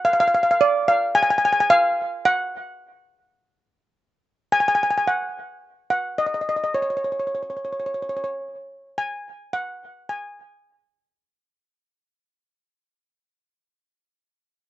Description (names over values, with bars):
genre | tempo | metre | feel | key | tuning
calypso | 107 BPM | 4/4 | swing 54% on 16ths | unclear | A4 = 436 Hz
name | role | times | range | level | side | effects
steel pan | solo | 0.0-13.1 s | C#5 to G#5 | -19 LUFS | equal | slapback echo
room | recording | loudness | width
light reverb | recorded outdoors, with no room sound, nothing above 7.9 kHz | -19 LUFS | side -14 dB against mid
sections
0.0-4.8 A section; 4.8-13.8 B section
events
fade-out 4.8-13.8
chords
none